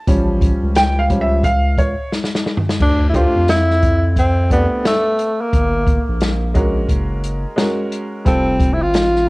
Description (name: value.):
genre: hip hop, jazz-hop.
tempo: 88 BPM.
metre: 4/4.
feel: swing 61% on 16ths.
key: unclear.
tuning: A4 = 440 Hz.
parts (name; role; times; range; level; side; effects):
warm upright piano; accompaniment; 0.0-9.3 s; F3 to A5; -19 LUFS; right 1 dB; none.
saturated sub bass; bass; 0.1-9.3 s; F1 to F2; -18 LUFS; equal; none.
open jazz drum kit; drums; 0.1-9.2 s; crash cymbal, hi-hat, kick drum, snare drum, toms; -18 LUFS; equal; cassette tape.
dark tenor saxophone; melody; 2.8-9.3 s; A3 to F4; -17 LUFS; equal; cassette tape, analog delay.
room: light reverb, small room reverb.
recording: home recording on cassette.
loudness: -14 LUFS.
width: side -23 dB against mid.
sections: 0.0-2.8 A section; 2.8-9.3 B section.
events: upright piano solo 0.0-2.8; drum fill 2.1-2.8.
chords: 0.1 A7b13; 2.8 Dmadd9; 5.5 Gm; 6.9 F#add9; 8.3 Fadd9.